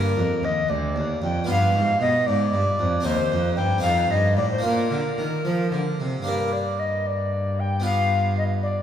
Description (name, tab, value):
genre	classical, baroque-style sonata movement with continuo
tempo	76 BPM (dotted quarters)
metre	6/8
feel	straight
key	G minor, Bb major from 3.0 s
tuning	A4 = 440 Hz
part	mellow alto recorder	melody	0.0-8.8 s	Bb4 to G5	-24 LUFS	left 1 dB	none
part	harpsichord	accompaniment	0.0-8.8 s	D2 to A4	-27 LUFS	right 1 dB	none
part	warm cello	bass	0.0-8.8 s	D2 to F3	-24 LUFS	equal	none
room	wet recital hall reverb, RT60 1.7 s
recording	heard from further back in the room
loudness	-20 LUFS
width	side -9 dB against mid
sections	0.0-6.3 A section; 6.3-8.8 A section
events	none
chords	0.0 Gm; 1.5 G7; 3.0 Cm/Eb; 3.8 F7; 4.6 Bb; 6.3 Gm; 7.8 G7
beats	0.69 | 1.48 2.26 | 3.04 3.83 | 4.63 5.45 | 6.26 7.06 | 7.85 8.63